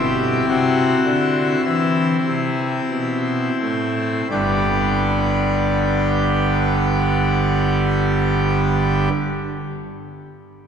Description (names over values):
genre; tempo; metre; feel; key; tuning
classical, chorale-style piece for pipe organ; 42-56 BPM; 4/4; straight; G major; A4 = 439 Hz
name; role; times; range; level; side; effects
pipe organ, full organ; solo; 0.0-9.1 s; G1 to G4; -17 LUFS; equal; none
room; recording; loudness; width
wet church reverb, RT60 3.3 s; none; -17 LUFS; side -7 dB against mid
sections
0.0-4.3 A section; 4.3-10.1 B section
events
slowing down 0.0-4.3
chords
0.0 C; 4.3 G